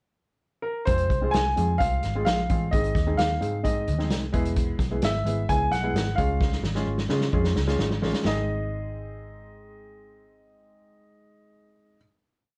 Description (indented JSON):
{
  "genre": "uptempo 1960s-style soul",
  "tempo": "130 BPM",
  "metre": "4/4",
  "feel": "straight",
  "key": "Ab major",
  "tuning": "A4 = 441 Hz",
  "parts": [
    { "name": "clear baby grand piano", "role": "melody", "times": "0.6-12.0 s", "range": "Bb4 to Ab5", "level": "-30 LUFS", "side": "equal", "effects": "none" },
    { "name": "warm upright piano", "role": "accompaniment", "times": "0.9-12.0 s", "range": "Ab3 to Ab4", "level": "-33 LUFS", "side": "equal", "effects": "none" },
    { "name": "vintage muted picked electric bass", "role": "bass", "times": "0.9-12.0 s", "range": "E1 to Db3", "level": "-30 LUFS", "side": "equal", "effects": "none" },
    { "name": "vintage drum kit", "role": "drums", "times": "0.9-8.4 s", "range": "hi-hat, kick drum, snare drum", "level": "-30 LUFS", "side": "equal", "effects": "none" }
  ],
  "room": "moderate studio reverb, RT60 0.6 s",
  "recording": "band playing live in one room, cassette tape",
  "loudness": "-25 LUFS",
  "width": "mono",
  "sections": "0.0-0.9 pickup bar; 0.9-8.2 pre-chorus; 8.2-11.9 final chord",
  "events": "drum fill 6.4-8.2",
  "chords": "0.0 N.C.; 0.9 Fm; 2.7 Ab; 4.3 E; 6.2 Db; 8.2 Ab"
}